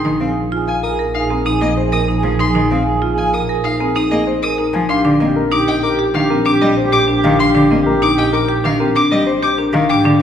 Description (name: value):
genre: classical, minimalist pattern music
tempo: 96 BPM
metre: 4/4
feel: straight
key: unclear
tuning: A4 = 440 Hz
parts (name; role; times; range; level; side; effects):
- dark grand piano; melody; 0.0-10.1 s; G4 to Ab5; -22 LUFS; left 6 dB; none
- mellow soprano saxophone; second line; 0.0-10.1 s; G4 to Ab4; -21 LUFS; right 2 dB; none
- rich cello; accompaniment; 0.0-10.2 s; D3 to C4; -21 LUFS; equal; none
- marimba with hard mallets; arpeggios; 0.0-10.2 s; C4 to Bb4; -17 LUFS; equal; none
- rich chamber double bass section; bass; 0.0-10.2 s; Bb1 to Ab2; -22 LUFS; right 3 dB; none
- rich violin; arpeggios; 0.7-10.0 s; Eb5 to Eb6; -21 LUFS; left 2 dB; none
room: wet recital hall reverb, RT60 1.6 s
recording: recorded in a church or concert hall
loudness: -13 LUFS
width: side -9 dB against mid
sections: 0.0-10.2 A section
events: none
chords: 0.0 Bb7sus4; 4.9 Ebmaj7/Bb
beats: 0.52 1.14 1.77 | 2.39 3.02 3.64 4.27 | 4.89 5.52 6.14 6.77 | 7.39 8.02 8.64 9.27 | 9.89